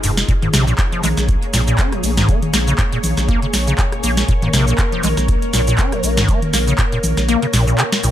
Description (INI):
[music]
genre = acid house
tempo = 120 BPM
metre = 4/4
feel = swing 56% on 16ths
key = unclear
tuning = A4 = 440 Hz
[part]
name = string machine, full ensemble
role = sustained chords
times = 0.0-8.1 s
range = Bb3 to Db5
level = -24 LUFS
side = left 1 dB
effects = ensemble chorus, sidechain pumping
[part]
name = acid bass, square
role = riff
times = 0.0-8.1 s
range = G2 to Db4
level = -20 LUFS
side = equal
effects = overdrive, ensemble chorus, sidechain pumping, tape echo
[part]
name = saturated sub bass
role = bass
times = 0.0-8.1 s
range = F1 to Bb1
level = -19 LUFS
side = equal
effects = sidechain pumping
[part]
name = booming analog drum machine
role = drums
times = 0.0-8.1 s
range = handclaps, hi-hat, rim click, shaker, snare drum, toms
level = -20 LUFS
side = equal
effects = none
[part]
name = electronic kick drum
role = drums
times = 0.3-6.9 s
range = none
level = -18 LUFS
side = equal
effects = none
[sound]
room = little or no reverb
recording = none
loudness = -14 LUFS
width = side -12 dB against mid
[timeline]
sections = 0.0-8.1 A section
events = kick drops out 7.3-8.1; drum fill 7.9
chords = 0.3 Bbm7